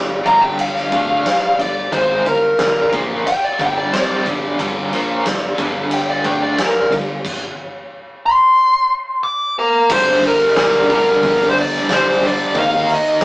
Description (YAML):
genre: hard rock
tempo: 90 BPM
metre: 4/4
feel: straight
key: G minor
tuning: A4 = 437 Hz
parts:
  - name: high-gain distorted guitar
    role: riff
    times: 0.0-13.2 s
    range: G2 to Eb4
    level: -25 LUFS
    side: left 1 dB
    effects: distortion
  - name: overdriven semi-hollow guitar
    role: riff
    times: 0.0-13.2 s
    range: G2 to Eb4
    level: -23 LUFS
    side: right 1 dB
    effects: tremolo
  - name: modern bright fingered electric bass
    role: bass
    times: 0.0-13.2 s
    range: G1 to Eb2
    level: -27 LUFS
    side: equal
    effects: none
  - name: smooth overdriven lead guitar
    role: melody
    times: 0.3-13.2 s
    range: Bb4 to D6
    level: -14 LUFS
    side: equal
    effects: none
  - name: huge arena drum kit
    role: drums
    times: 0.3-13.2 s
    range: crash cymbal, hi-hat, kick drum, ride cymbal, snare drum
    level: -22 LUFS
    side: equal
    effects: none
room: moderate stone room reverb, RT60 1.1 s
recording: rough rehearsal-room recording, tube saturation, small speaker sound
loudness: -13 LUFS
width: side -24 dB against mid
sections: 0.0-9.9 A section; 9.9-13.2 B section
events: lead electric guitar solo 0.0-9.9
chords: 0.0 Gm; 7.2 N.C.; 9.9 Gm; 12.6 Eb5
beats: 0.60 1.27 | 1.93 2.60 3.26 3.93 | 4.59 5.26 5.92 6.59 | 7.25 7.92 8.58 9.24 | 9.91 10.57 11.23 11.90 | 12.56 13.23